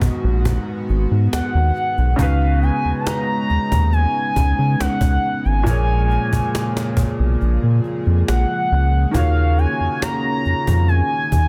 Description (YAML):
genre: contemporary R&B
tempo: 69 BPM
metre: 4/4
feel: straight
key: Eb minor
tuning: A4 = 440 Hz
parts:
  - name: gliding portamento lead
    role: melody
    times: 0.0-11.5 s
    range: Eb5 to Bb5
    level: -25 LUFS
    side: equal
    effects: chorus
  - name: felt-muted upright piano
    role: accompaniment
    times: 0.0-11.5 s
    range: Ab2 to Db5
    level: -28 LUFS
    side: equal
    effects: none
  - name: chorused pulse-width pad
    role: sustained chords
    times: 0.0-11.5 s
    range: Db3 to Ab4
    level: -28 LUFS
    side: equal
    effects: none
  - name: round analog bass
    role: bass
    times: 0.0-11.5 s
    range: Ab1 to Db3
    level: -19 LUFS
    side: equal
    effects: none
  - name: cajon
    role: drums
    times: 0.0-11.5 s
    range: none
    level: -27 LUFS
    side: equal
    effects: none
room: little or no reverb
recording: dense, heavily limited modern master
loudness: -18 LUFS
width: mono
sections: 0.0-11.5 A section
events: kick muted 7.4-9.1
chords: 0.0 Abm7; 2.2 Db9sus4; 5.7 Bbm7; 9.1 Ebm9